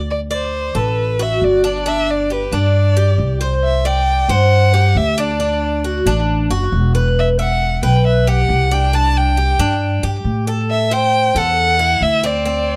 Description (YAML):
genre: latin, Cuban son and guajira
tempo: 136 BPM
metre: 4/4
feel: straight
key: unclear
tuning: A4 = 440 Hz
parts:
  - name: Cuban tres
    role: arpeggios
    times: 0.0-12.8 s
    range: C4 to E5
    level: -22 LUFS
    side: equal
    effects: slapback echo
  - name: upright bass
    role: bass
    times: 0.0-12.8 s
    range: E1 to A2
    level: -19 LUFS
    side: equal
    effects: none
  - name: warm violin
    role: melody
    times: 0.1-12.8 s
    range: B4 to A5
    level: -20 LUFS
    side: equal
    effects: none
room: little or no reverb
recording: dry, close 1970s-style studio recording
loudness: -16 LUFS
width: mono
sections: 0.1-12.8 A section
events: none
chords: 0.1 D6; 1.9 G5; 3.6 Csus2; 5.4 Dadd9; 7.2 Emadd9; 8.9 Csus2; 10.7 Am